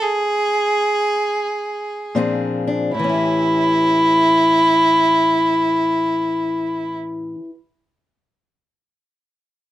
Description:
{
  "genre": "acoustic country blues, solo or duo",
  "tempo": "free time",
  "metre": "none",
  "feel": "none",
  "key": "A mixolydian",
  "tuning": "A4 = 440 Hz",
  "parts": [
    { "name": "clear fiddle", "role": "melody", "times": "0.0-7.0 s", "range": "E4 to G#4", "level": "-17 LUFS", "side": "right 1 dB", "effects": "none" },
    { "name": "fingerpicked steel-string acoustic guitar", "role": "accompaniment", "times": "2.1-7.5 s", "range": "A2 to Ab4", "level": "-18 LUFS", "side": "left 2 dB", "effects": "none" }
  ],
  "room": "moderate studio reverb, RT60 0.6 s",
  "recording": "dark, warm production",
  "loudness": "-15 LUFS",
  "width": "side -14 dB against mid",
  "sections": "0.0-2.9 A section; 2.9-6.2 B section",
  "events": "slowing down 0.0-2.9; stop 0.0-2.2",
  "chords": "0.0 N.C.; 2.2 Bb9; 2.9 A7",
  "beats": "free time"
}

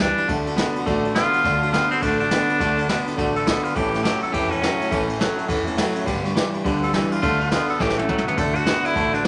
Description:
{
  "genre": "rockabilly",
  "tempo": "208 BPM",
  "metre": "4/4",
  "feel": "swing 61% on 8ths",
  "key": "D major",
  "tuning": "A4 = 440 Hz",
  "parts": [
    { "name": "bright tenor saxophone", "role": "melody", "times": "0.0-9.3 s", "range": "A3 to A4", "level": "-25 LUFS", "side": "equal", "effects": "none" },
    { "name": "picked steel-string acoustic guitar", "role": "accompaniment", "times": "0.0-9.3 s", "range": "A2 to B4", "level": "-30 LUFS", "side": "equal", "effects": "none" },
    { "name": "warm upright piano", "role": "accompaniment", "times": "0.0-9.3 s", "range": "C#5 to D6", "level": "-35 LUFS", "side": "equal", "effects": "none" },
    { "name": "twangy electric guitar", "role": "riff", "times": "0.0-9.3 s", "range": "G2 to B3", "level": "-27 LUFS", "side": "equal", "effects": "none" },
    { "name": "upright bass", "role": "bass", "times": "0.0-9.3 s", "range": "E1 to D2", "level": "-34 LUFS", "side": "equal", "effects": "none" },
    { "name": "jazz brush drum kit", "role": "drums", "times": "0.0-9.3 s", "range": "kick drum, ride cymbal, snare drum, toms", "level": "-28 LUFS", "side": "equal", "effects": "none" }
  ],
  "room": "moderate large studio reverb, RT60 1.2 s",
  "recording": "nothing above 10.7 kHz",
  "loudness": "-21 LUFS",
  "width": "mono",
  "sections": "0.0-8.4 A section",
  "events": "tenor saxophone solo 0.0-8.4; drum fill 7.8-8.4",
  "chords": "0.3 D; 3.8 A; 6.1 G; 7.2 D; 7.8 A; 8.4 D",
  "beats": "0.00 | 0.29 0.58 0.87 1.16 | 1.45 1.74 2.02 2.31 | 2.60 2.89 3.18 3.47 | 3.76 4.05 4.34 4.63 | 4.92 5.21 5.49 5.78 | 6.07 6.36 6.65 6.94 | 7.23 7.51 7.80 8.09 | 8.38 8.67 8.96 9.25"
}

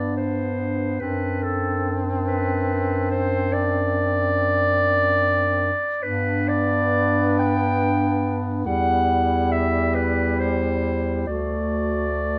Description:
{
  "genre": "classical, lyrical piece for single-reed quartet",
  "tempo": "43-49 BPM (dotted quarters)",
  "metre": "12/8",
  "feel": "rubato",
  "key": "unclear",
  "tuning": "A4 = 440 Hz",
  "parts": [
    { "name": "clear clarinet", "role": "melody", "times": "0.0-12.4 s", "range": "A4 to G5", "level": "-25 LUFS", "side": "equal", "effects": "none" },
    { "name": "warm clarinet", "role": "second line", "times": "0.0-12.4 s", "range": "D4 to F#4", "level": "-33 LUFS", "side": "equal", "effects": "none" },
    { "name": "mellow tenor saxophone", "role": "accompaniment", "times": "0.0-12.4 s", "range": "G3 to C4", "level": "-30 LUFS", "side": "equal", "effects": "none" },
    { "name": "warm bass clarinet", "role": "bass", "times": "0.0-12.4 s", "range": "D2 to G2", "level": "-27 LUFS", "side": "equal", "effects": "none" }
  ],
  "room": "light reverb",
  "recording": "close, detailed microphones",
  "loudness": "-22 LUFS",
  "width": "mono",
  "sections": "0.0-12.4 A section",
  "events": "none",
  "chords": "0.0 G; 1.0 D7/F#; 6.0 G; 8.7 Em; 11.3 D",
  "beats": "| 1.01 2.27 3.53 4.79 | 6.03 7.39 8.66 9.95 | 11.27"
}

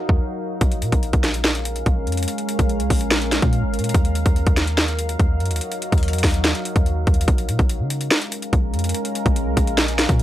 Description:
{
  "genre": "hip hop, trap",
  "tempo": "144 BPM",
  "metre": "4/4",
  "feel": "half-time",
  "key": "Bb minor",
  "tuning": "A4 = 440 Hz",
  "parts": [
    { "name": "deep dark ambient pad", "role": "sustained chords", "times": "0.0-10.2 s", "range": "Gb3 to F5", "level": "-26 LUFS", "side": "equal", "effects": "chorus, built-in reverb" },
    { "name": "clean 808-style bass", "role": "bass", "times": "0.1-10.2 s", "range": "Ab1 to Db3", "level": "-22 LUFS", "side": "equal", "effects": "none" },
    { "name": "trap drum kit", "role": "drums", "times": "0.1-10.2 s", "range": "hi-hat, kick drum, snare drum", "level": "-19 LUFS", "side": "equal", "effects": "overdrive" }
  ],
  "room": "little or no reverb",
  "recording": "dry, gritty hardware recording, transformer saturation",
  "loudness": "-18 LUFS",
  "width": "side -13 dB against mid",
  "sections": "0.0-7.3 A section; 7.3-10.2 B section",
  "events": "break 0.0-0.6",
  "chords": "0.0 Ebmadd9; 0.6 Bbm7; 3.9 Ebmadd9; 7.3 Bbm7",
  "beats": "0.20 | 0.61 1.03 1.45 1.86 | 2.28 2.69 3.11 3.53 | 3.94 4.36 4.78 5.20 | 5.61 6.03 6.45 6.86 | 7.28 7.70 8.11 8.53 | 8.95 9.36 9.78 10.20"
}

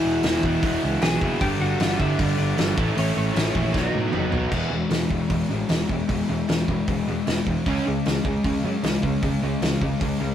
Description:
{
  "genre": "punk rock",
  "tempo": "154 BPM",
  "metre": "4/4",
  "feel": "straight",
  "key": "E major",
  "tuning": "A4 = 436 Hz",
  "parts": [
    { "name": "lightly driven lead guitar", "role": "melody", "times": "0.0-4.3 s", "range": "C#4 to G#5", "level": "-28 LUFS", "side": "left 2 dB", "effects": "none" },
    { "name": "fuzz guitar", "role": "riff", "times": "0.0-10.3 s", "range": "E2 to C#4", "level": "-32 LUFS", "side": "right 1 dB", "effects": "distortion" },
    { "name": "overdriven semi-hollow guitar", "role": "riff", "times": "0.0-10.3 s", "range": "E2 to C#4", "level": "-27 LUFS", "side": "right 4 dB", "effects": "none" },
    { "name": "tight distorted guitar", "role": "riff", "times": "0.0-10.3 s", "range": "G2 to E4", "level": "-28 LUFS", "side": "left 6 dB", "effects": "distortion" },
    { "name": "picked electric bass", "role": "bass", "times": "0.0-10.3 s", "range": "E1 to A2", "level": "-27 LUFS", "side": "equal", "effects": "none" },
    { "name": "loose indie drum kit", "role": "drums", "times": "0.2-10.1 s", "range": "crash cymbal, hi-hat, kick drum, snare drum, toms", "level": "-26 LUFS", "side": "equal", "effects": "none" }
  ],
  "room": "light reverb",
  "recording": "rough rehearsal-room recording",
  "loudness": "-20 LUFS",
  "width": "side -10 dB against mid",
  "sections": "0.0-4.5 A section; 4.5-10.3 B section",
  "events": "drum fill 3.7-4.5",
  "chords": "0.0 E; 1.4 G; 2.8 A; 3.7 B; 4.5 E; 7.7 C#5",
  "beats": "0.24 0.63 1.02 | 1.41 1.80 2.19 2.58 | 2.97 3.36 3.75 4.14 | 4.53 4.92 5.31 5.70 | 6.09 6.49 6.88 7.27 | 7.66 8.05 8.44 8.83 | 9.22 9.62 10.01"
}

